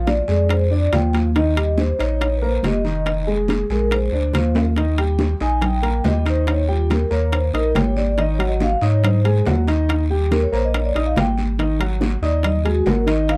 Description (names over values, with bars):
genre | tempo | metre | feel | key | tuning
Afro-Cuban jazz | 141 BPM | 4/4 | straight | unclear | A4 = 440 Hz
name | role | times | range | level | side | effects
vibraphone with soft mallets | melody | 0.0-13.4 s | F4 to Ab5 | -26 LUFS | equal | none
warm concert grand piano | accompaniment | 0.0-13.4 s | Eb3 to Eb6 | -26 LUFS | equal | none
pure sine sub bass | bass | 0.0-13.4 s | F1 to Ab2 | -22 LUFS | equal | none
bongos | percussion | 0.1-13.4 s | none | -29 LUFS | equal | none
congas | percussion | 0.1-13.4 s | none | -28 LUFS | equal | none
guiro | percussion | 0.1-13.4 s | none | -40 LUFS | equal | none
timbales | percussion | 0.1-13.4 s | none | -29 LUFS | equal | none
room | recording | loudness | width
little or no reverb | dark, warm production | -19 LUFS | mono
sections
0.0-4.8 A section; 4.8-13.4 B section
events
drum fill 4.6; vibraphone solo 4.8-13.4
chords
0.0 Bb7; 1.4 Ebadd9; 3.1 Fm7; 3.9 Bb9; 4.8 Eb; 8.2 Ab7; 9.9 Eb; 11.6 Ab5